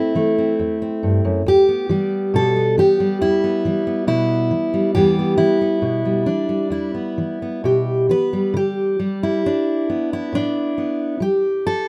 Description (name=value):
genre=folk, solo fingerstyle acoustic guitar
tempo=68 BPM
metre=4/4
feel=rubato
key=E minor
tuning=A4 = 438 Hz
part: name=fingerpicked steel-string acoustic guitar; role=solo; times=0.0-11.9 s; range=E2 to B4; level=-19 LUFS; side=equal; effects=none
room=light reverb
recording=none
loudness=-19 LUFS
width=mono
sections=0.0-8.5 A section; 8.5-11.9 B section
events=none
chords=0.0 Am; 1.5 Em; 8.5 Dsus4